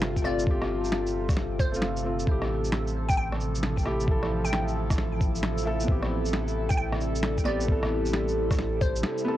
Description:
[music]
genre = future garage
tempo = 133 BPM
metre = 4/4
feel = swing 65% on 16ths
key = A minor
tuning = A4 = 438 Hz
[part]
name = felt-muted upright piano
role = accompaniment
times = 0.0-9.4 s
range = A3 to A4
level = -33 LUFS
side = equal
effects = sidechain pumping, cassette tape, analog delay
[part]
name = warbly tape-like pad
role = sustained chords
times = 0.0-9.4 s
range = C3 to A4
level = -31 LUFS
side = left 1 dB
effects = chorus, built-in reverb, phaser, sidechain pumping, cassette tape
[part]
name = warm sub bass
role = bass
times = 0.0-9.0 s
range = G1 to A1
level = -31 LUFS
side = equal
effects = sidechain pumping
[part]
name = electronic snare drum, shaker and rim click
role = drums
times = 0.0-9.2 s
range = none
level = -32 LUFS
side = equal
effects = overdrive, cassette tape
[part]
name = glassy wavetable pluck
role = melody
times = 0.2-9.3 s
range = C5 to G5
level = -34 LUFS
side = equal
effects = chorus, cassette tape, tape echo
[part]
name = electronic kick drum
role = drums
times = 0.2-8.9 s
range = none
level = -26 LUFS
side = equal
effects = overdrive, cassette tape
[sound]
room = light reverb, digital ambience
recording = home recording on cassette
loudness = -24 LUFS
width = side -13 dB against mid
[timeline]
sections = 0.0-9.4 A section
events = band accent 9.0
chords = 0.0 G9sus4; 2.3 Fmaj7/A; 5.9 Am7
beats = 0.02 | 0.47 0.92 1.37 1.82 | 2.27 2.72 3.17 3.62 | 4.08 4.53 4.98 5.43 | 5.88 6.33 6.78 7.23 | 7.68 8.14 8.59 9.04

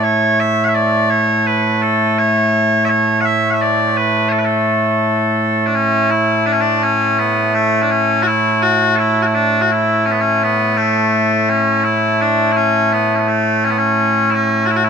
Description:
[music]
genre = scottish traditional, Scottish pipe music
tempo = 84 BPM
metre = 2/4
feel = straight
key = A major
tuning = A4 = 438 Hz
[part]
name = loud bright bagpipes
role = solo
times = 0.0-14.9 s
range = A2 to F#5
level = -12 LUFS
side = equal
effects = none
[sound]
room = moderate huge ambient reverb, RT60 4.0 s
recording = none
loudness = -12 LUFS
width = side -6 dB against mid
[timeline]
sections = 0.0-5.8 A section; 5.8-14.9 A section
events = none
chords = none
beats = | 0.04 0.75 | 1.47 2.18 | 2.90 3.61 | 4.32 5.04 | 5.75 6.47 | 7.18 7.89 | 8.61 9.32 | 10.04 10.75 | 11.47 12.18 | 12.89 13.61 | 14.32

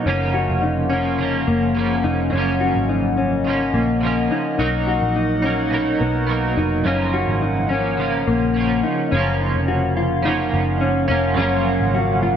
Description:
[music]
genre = dream pop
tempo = 106 BPM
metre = 4/4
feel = straight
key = F# major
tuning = A4 = 436 Hz
[part]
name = twelve-string electric guitar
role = accompaniment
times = 0.0-12.4 s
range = F#2 to D#4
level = -22 LUFS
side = right 4 dB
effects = tremolo, analog chorus
[part]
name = warbly tape-like pad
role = sustained chords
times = 0.0-12.4 s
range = C#4 to F#5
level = -24 LUFS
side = left 1 dB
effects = chorus, built-in reverb
[part]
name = mellow electric guitar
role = arpeggios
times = 0.0-12.4 s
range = A#3 to F#4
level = -22 LUFS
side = left 4 dB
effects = lush chorus, digital delay
[part]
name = vintage muted picked electric bass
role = bass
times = 0.1-12.4 s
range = E#1 to B1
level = -23 LUFS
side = equal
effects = none
[sound]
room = wet concert hall reverb, RT60 2.1 s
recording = none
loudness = -17 LUFS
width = side -8 dB against mid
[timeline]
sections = 0.0-9.1 A section; 9.1-12.4 B section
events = none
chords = 0.1 F#maj7; 4.6 Bmaj7; 6.9 F#maj7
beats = | 0.06 0.62 1.19 1.76 | 2.32 2.89 3.45 4.02 | 4.59 5.15 5.72 6.29 | 6.85 7.42 7.98 8.55 | 9.12 9.68 10.25 10.81 | 11.38 11.95

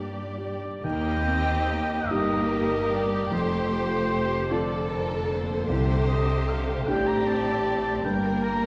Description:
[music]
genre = cinematic, emotional film score for orchestra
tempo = 50 BPM (dotted quarters)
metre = 6/8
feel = rubato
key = Eb lydian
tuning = A4 = 440 Hz
[part]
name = rich studio violin section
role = melody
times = 0.0-8.7 s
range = A4 to Eb5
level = -39 LUFS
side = equal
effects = none
[part]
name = warm oboe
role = second line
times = 0.0-8.7 s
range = C5 to Bb5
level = -33 LUFS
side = equal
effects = none
[part]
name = warm studio violin section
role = second line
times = 0.0-8.7 s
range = G4 to Bb4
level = -38 LUFS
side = equal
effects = none
[part]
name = felt-muted upright piano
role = accompaniment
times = 0.0-8.7 s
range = C2 to A4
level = -34 LUFS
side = equal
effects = none
[part]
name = warm studio viola section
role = accompaniment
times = 0.0-8.7 s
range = D3 to C4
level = -35 LUFS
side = equal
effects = none
[part]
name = rich studio cello section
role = bass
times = 0.0-8.7 s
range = Eb2 to C3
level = -34 LUFS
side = equal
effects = none
[part]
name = rich studio double bass section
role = bass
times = 0.8-8.7 s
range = F1 to Eb2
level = -34 LUFS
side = equal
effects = none
[part]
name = mellow French horn section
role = sustained chords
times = 2.1-8.7 s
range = Bb3 to C5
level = -33 LUFS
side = equal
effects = none
[sound]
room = wet scoring stage reverb, RT60 1.7 s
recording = heard from further back in the room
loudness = -26 LUFS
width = mono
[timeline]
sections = 0.8-8.7 A section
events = none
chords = 0.0 Gm; 0.8 Eb; 3.3 F; 5.7 Csus2; 8.0 Gm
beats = | 0.84 2.10 | 3.32 4.51 | 5.70 6.87 | 8.04

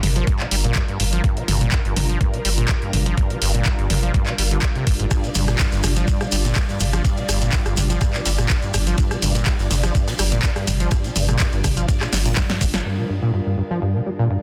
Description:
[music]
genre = acid house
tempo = 124 BPM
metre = 4/4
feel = straight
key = G minor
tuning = A4 = 440 Hz
[part]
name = string machine, full ensemble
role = sustained chords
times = 0.0-14.4 s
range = G3 to D5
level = -32 LUFS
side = equal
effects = phaser, ensemble chorus, sidechain pumping
[part]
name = acid bass, saw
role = riff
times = 0.0-14.4 s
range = G2 to G3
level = -26 LUFS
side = equal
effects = overdrive, subtle chorus, cassette tape, sidechain pumping, digital delay
[part]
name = saturated sub bass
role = bass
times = 0.0-12.8 s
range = G1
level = -24 LUFS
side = equal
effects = sidechain pumping
[part]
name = punchy analog drum machine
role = drums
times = 0.0-12.8 s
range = handclaps, hi-hat, rim click, snare drum, toms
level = -26 LUFS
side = equal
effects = low-pass filter on toms, low-pass filter on hats, low-pass filter on snare
[part]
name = electronic kick drum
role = drums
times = 0.3-12.7 s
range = none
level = -23 LUFS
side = equal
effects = none
[part]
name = compact cocktail drum kit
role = drums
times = 5.1-12.7 s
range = hi-hat, ride cymbal, snare drum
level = -38 LUFS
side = equal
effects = none
[part]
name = shekere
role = percussion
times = 5.1-12.8 s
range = none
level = -34 LUFS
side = equal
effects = none
[sound]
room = small room ambience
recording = dense, heavily limited modern master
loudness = -20 LUFS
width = mono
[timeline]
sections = 0.0-12.9 A section; 12.9-14.4 B section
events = drum fill 12.1-12.9; band accent 12.7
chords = 0.0 Gm7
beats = 0.27 0.76 | 1.24 1.72 2.21 2.69 | 3.17 3.66 4.14 4.63 | 5.11 5.59 6.08 6.56 | 7.05 7.53 8.01 8.50 | 8.98 9.46 9.95 10.43 | 10.92 11.40 11.88 12.37 | 12.85 13.34 13.82 14.30

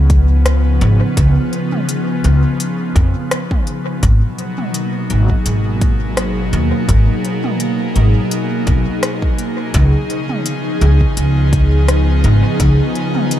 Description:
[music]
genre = ambient dub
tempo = 84 BPM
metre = 4/4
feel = swing 55% on 16ths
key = unclear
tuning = A4 = 442 Hz
[part]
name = airy breathy pad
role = sustained chords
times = 0.0-13.4 s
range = B2 to G#4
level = -18 LUFS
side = left 1 dB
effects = chorus
[part]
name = upright bass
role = bass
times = 0.0-12.8 s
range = G#1 to E#2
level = -12 LUFS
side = equal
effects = tube saturation
[part]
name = electronic kick drum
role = drums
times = 0.1-12.8 s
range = none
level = -16 LUFS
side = equal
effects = small room ambience
[part]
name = organic electronic drum kit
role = drums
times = 0.1-13.4 s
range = hi-hat, rim click, toms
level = -24 LUFS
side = equal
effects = overdrive, small room ambience, dub echo
[sound]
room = little or no reverb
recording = none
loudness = -13 LUFS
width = side -12 dB against mid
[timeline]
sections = 0.0-13.4 A section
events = none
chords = 0.0 C#9; 4.0 G#m9; 9.7 C#9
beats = 0.46 | 1.17 1.89 2.60 3.31 | 4.03 4.74 5.46 6.17 | 6.88 7.60 8.31 9.03 | 9.74 10.46 11.17 11.88 | 12.60 13.31

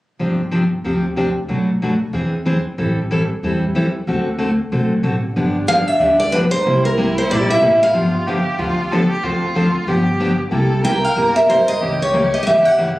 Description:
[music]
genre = acoustic string swing (jazz manouche)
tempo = 186 BPM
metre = 4/4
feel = swing 61% on 8ths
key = unclear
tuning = A4 = 440 Hz
[part]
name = picked steel-string acoustic guitar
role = accompaniment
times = 0.2-12.9 s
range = B2 to A4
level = -19 LUFS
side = left 1 dB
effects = none
[part]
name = upright bass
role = bass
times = 0.2-13.0 s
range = G1 to E2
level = -24 LUFS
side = equal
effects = none
[part]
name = dark violin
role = second line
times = 5.4-13.0 s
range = D4 to Bb4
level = -23 LUFS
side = right 2 dB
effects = none
[part]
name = picked steel-string acoustic guitar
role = melody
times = 5.7-8.7, 10.8-13.0 s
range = Bb4 to G5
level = -15 LUFS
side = equal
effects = none
[sound]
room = light reverb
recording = recorded on a phone in the room, club reverb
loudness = -15 LUFS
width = side -17 dB against mid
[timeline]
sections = 0.2-5.4 A section; 5.4-13.0 B section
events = none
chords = 0.2 G7sus4; 1.5 Bm7; 2.1 Eaug7; 2.8 Am7; 4.1 D7; 5.4 G7; 6.7 C7; 7.9 G7; 9.2 Dm7; 9.9 G7; 10.5 C7; 11.8 C#dim7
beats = | 0.19 0.52 0.84 1.16 | 1.49 1.81 2.13 2.45 | 2.78 3.10 3.42 3.75 | 4.07 4.39 4.71 5.04 | 5.36 5.68 6.01 6.33 | 6.65 6.97 7.30 7.62 | 7.94 8.26 8.59 8.91 | 9.23 9.55 9.88 10.20 | 10.52 10.85 11.17 11.49 | 11.81 12.14 12.46 12.78

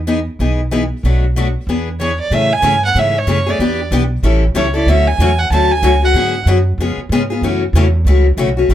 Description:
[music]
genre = acoustic string swing (jazz manouche)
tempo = 188 BPM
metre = 4/4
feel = swing 58% on 8ths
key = A major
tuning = A4 = 440 Hz
[part]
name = upright bass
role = bass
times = 0.0-8.7 s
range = A1 to A2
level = -15 LUFS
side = equal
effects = none
[part]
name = picked steel-string acoustic guitar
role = accompaniment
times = 0.1-8.7 s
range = B2 to A4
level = -16 LUFS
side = left 3 dB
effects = none
[part]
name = warm violin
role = melody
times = 2.0-6.5 s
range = C#5 to A5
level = -16 LUFS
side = right 3 dB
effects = plate reverb
[sound]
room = light reverb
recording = none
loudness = -12 LUFS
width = side -11 dB against mid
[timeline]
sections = 0.0-2.3 A section; 2.3-8.7 B section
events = none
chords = 0.0 Emaj7; 1.0 Bm7; 1.7 E7; 2.3 Amaj7; 3.6 Em7; 4.2 A7; 4.9 Dmaj7; 6.1 G#m7b5; 6.8 C#7; 7.4 F#m7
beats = 0.08 0.40 0.72 | 1.04 1.36 1.68 2.00 | 2.31 2.63 2.95 3.27 | 3.59 3.91 4.23 4.55 | 4.87 5.19 5.50 5.82 | 6.14 6.46 6.78 7.10 | 7.42 7.74 8.06 8.38 | 8.69

